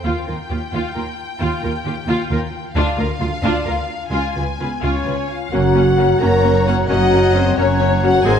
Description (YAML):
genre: cinematic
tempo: 88 BPM (dotted quarters)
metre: 6/8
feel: straight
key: unclear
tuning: A4 = 440 Hz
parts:
  - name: rich studio violin section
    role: melody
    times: 0.0-8.4 s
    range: C5 to Ab5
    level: -26 LUFS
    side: left 5 dB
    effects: none
  - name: clear symphonic violin section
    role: second line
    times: 0.0-8.4 s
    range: D4 to Bb5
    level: -25 LUFS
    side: left 3 dB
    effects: none
  - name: clear symphonic viola section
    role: accompaniment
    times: 0.0-8.3 s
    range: Bb3 to F4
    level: -25 LUFS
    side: right 1 dB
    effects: none
  - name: clear symphonic double bass section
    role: bass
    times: 0.1-8.4 s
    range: Gb1 to Eb2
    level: -23 LUFS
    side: right 3 dB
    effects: none
  - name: rich symphonic cello section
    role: bass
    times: 0.1-8.4 s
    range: Db2 to Ab2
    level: -22 LUFS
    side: right 2 dB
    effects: none
  - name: mellow French horn section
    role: sustained chords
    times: 4.6-8.4 s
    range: Cb4 to Bb4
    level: -17 LUFS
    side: left 2 dB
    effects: none
  - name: bright oboe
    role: second line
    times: 5.5-8.4 s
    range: Eb5 to Gb5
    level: -27 LUFS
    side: equal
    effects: none
  - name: mellow clarinet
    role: second line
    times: 5.5-8.4 s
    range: C5 to Db5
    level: -25 LUFS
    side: equal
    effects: none
  - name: mellow hollow flute section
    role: second line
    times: 5.5-8.4 s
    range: Bb5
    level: -26 LUFS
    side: left 7 dB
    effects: none
room: wet scoring stage reverb, RT60 1.9 s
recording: none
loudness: -15 LUFS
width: side -8 dB against mid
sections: 0.1-5.5 A section; 5.5-8.4 B section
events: none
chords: 0.1 Ebadd9; 2.8 Bb/D (rootless); 4.1 Db7; 5.5 Gb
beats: | 0.05 0.74 | 1.41 2.09 | 2.76 3.44 | 4.14 4.84 | 5.53 6.21 | 6.89 7.58 | 8.25